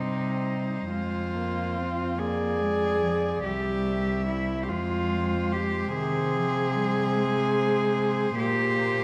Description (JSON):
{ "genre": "classical, lyrical piece for cello ensemble", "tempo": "48 BPM (dotted quarters)", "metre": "6/8", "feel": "uneven beats, rubato", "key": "unclear", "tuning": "A4 = 440 Hz", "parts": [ { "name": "warm cello", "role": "melody", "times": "0.0-9.0 s", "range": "C5 to E5", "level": "-38 LUFS", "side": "equal", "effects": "none" }, { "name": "warm cello", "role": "second line", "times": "0.0-9.0 s", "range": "Eb4 to Ab4", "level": "-30 LUFS", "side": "equal", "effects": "none" }, { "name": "warm cello", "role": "accompaniment", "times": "0.0-9.0 s", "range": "Eb3 to C4", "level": "-34 LUFS", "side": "equal", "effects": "none" }, { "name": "clear cello", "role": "bass", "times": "0.0-9.0 s", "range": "C2 to C3", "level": "-33 LUFS", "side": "equal", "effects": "none" } ], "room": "moderate concert hall reverb, RT60 1.8 s", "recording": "dark, warm production", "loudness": "-27 LUFS", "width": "mono", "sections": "0.0-9.0 A section", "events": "none", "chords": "0.0 Cm; 0.9 Fm; 3.5 C; 4.7 Fm; 5.9 Ab/C; 8.4 N.C.", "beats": "| 0.92 2.20 | 3.45 4.70 | 5.94 7.15 | 8.37" }